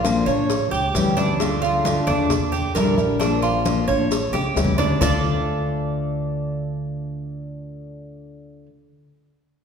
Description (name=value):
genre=latin, Cuban son and guajira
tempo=133 BPM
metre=4/4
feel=straight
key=D harmonic minor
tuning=A4 = 437 Hz
part: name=fingerpicked steel-string acoustic guitar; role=accompaniment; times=0.0-8.7 s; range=D3 to F4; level=-24 LUFS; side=left 3 dB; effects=none
part: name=Cuban tres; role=arpeggios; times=0.0-8.7 s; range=D4 to D5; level=-24 LUFS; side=right 3 dB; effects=none
part: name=upright bass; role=bass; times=0.0-8.7 s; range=A1 to E2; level=-26 LUFS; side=right 1 dB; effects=none
part: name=congas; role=percussion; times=0.0-5.1 s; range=none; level=-28 LUFS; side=equal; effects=none
part: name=cowbell and bongos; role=percussion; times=0.0-5.1 s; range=none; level=-29 LUFS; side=left 4 dB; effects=none
part: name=maracas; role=percussion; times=0.1-5.1 s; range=none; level=-34 LUFS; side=right 5 dB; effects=none
room=wet scoring stage reverb, RT60 1.7 s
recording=recorded in a church or concert hall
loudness=-19 LUFS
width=side -6 dB against mid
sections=0.0-5.0 A section; 5.0-8.6 B section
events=drum fill 4.3-5.0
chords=0.5 A7; 1.4 Dm; 2.3 Em7b5; 3.2 Bb; 4.1 A7; 5.0 Dm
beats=0.04 0.49 0.94 | 1.39 1.85 2.30 2.75 | 3.20 3.65 4.11 4.56 | 5.01 5.46 5.92 6.37 | 6.82 7.28 7.73 8.18